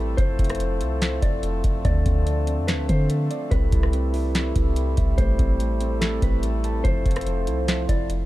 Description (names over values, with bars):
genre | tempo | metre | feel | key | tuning
hip hop, atmospheric cloud-rap | 144 BPM | 4/4 | half-time | unclear | A4 = 442 Hz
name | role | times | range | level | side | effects
mellow French horn section | sustained chords | 0.0-8.3 s | F3 to A4 | -29 LUFS | left 1 dB | sidechain pumping
soft 808-style bass | bass | 0.0-8.3 s | F1 to D3 | -24 LUFS | equal | none
mellow electric guitar | melody | 0.2-8.1 s | A4 to D5 | -32 LUFS | left 2 dB | digital delay
booming analog drum machine | drums | 0.2-8.2 s | hi-hat, kick drum, rim click, snare drum | -23 LUFS | equal | none
muted felt-like synth keys | arpeggios | 1.9-8.3 s | D3 to A5 | -32 LUFS | right 3 dB | chorus, digital delay
room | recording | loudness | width
little or no reverb | dark, warm production | -20 LUFS | side -16 dB against mid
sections
0.0-8.3 A section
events
none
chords
0.2 Fmaj7; 1.8 Dm7; 3.5 C6; 5.2 Am7; 6.8 Fmaj7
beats
| 0.18 0.60 1.01 1.43 | 1.85 2.27 2.68 3.10 | 3.52 3.93 4.35 4.76 | 5.18 5.60 6.01 6.43 | 6.85 7.26 7.68 8.10